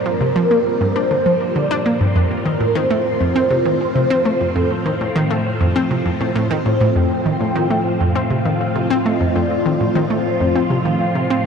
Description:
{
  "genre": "ambient, sequencer-driven space music",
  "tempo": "100 BPM",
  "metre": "4/4",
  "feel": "straight",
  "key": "unclear",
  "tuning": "A4 = 440 Hz",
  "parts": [
    { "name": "mellow horn-like synth lead", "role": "melody", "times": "0.0-11.5 s", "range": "A4 to G5", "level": "-21 LUFS", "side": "right 1 dB", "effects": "ensemble chorus, shimmer reverb, tape echo" },
    { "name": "phased string machine", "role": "sustained chords", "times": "0.0-11.5 s", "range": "A2 to F4", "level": "-20 LUFS", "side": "equal", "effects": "ensemble chorus, phaser, shimmer reverb" },
    { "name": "analog pluck", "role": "riff", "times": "0.1-11.4 s", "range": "F2 to D4", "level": "-19 LUFS", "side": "equal", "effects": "chorus, shimmer reverb, tape echo" }
  ],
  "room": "wet huge ambient reverb, RT60 8.9 s",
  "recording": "dark, warm production",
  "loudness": "-15 LUFS",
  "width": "side -6 dB against mid",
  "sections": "0.0-11.5 A section",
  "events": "none",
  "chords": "0.0 Gm7; 2.2 F"
}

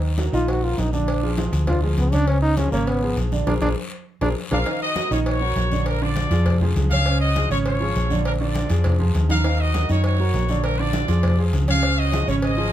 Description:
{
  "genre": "latin, salsa",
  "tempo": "201 BPM",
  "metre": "4/4",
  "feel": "straight",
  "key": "Eb minor",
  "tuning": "A4 = 440 Hz",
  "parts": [
    { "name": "warm grand piano", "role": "accompaniment", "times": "0.0-12.7 s", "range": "Db3 to Eb5", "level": "-26 LUFS", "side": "right 3 dB", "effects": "none" },
    { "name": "hollow-body short-scale fingered electric bass", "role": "bass", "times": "0.0-12.7 s", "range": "Ab1 to Gb2", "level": "-21 LUFS", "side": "equal", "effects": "none" },
    { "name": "congas", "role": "percussion", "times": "0.0-12.7 s", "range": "none", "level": "-30 LUFS", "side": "left 2 dB", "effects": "none" },
    { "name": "cowbell", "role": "percussion", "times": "0.2-12.6 s", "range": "none", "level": "-33 LUFS", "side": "left 3 dB", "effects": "none" },
    { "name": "guiro", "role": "percussion", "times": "0.2-12.7 s", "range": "none", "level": "-39 LUFS", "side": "left 5 dB", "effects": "none" },
    { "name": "clear trombone", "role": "melody", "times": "0.3-4.6 s", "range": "Ab3 to Gb4", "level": "-24 LUFS", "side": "equal", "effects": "none" },
    { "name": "clear trumpet section", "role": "melody", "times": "4.5-12.7 s", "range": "D4 to F5", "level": "-25 LUFS", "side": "left 1 dB", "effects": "none" }
  ],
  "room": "light reverb",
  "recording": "none",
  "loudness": "-18 LUFS",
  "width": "side -12 dB against mid",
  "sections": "0.0-4.7 A section; 4.7-12.7 B section",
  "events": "trombone solo 0.0-4.7; band accent 3.5-4.7; drum fill 3.9-4.7",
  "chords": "0.0 Ebm; 1.1 Bb7; 2.3 Db6; 3.5 Bb7(no3); 4.7 Ebm7; 5.9 Bb7; 7.1 Db69; 8.3 Bb7; 9.4 Ebm7; 10.6 Bb7; 11.8 Dbadd9"
}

